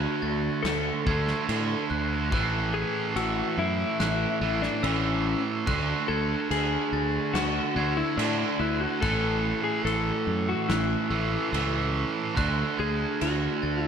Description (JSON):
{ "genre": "post-rock", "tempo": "72 BPM", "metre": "4/4", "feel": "straight", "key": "unclear", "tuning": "A4 = 440 Hz", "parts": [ { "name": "electric slide guitar", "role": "melody", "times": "0.0-13.9 s", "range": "C#4 to A4", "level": "-30 LUFS", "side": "left 8 dB", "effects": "digital delay" }, { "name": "glockenspiel with soft plastic mallets", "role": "arpeggios", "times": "0.0-13.9 s", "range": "E6 to A6", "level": "-35 LUFS", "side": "left 2 dB", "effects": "digital delay" }, { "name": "distorted electric guitar", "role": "riff", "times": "0.0-13.9 s", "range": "A2 to D4", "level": "-28 LUFS", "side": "right 6 dB", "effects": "distortion" }, { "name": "growling fingered electric bass", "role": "bass", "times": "0.0-13.9 s", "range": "A1 to A2", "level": "-30 LUFS", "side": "left 1 dB", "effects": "overdrive" }, { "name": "loose indie drum kit", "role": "drums", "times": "0.7-13.4 s", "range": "crash cymbal, kick drum, snare drum", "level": "-34 LUFS", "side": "right 1 dB", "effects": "none" } ], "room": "light reverb, small room ambience", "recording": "none", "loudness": "-24 LUFS", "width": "side -7 dB against mid", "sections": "0.0-13.9 A section", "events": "none", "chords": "0.0 D; 2.3 A5; 5.7 D; 9.0 A; 12.4 D" }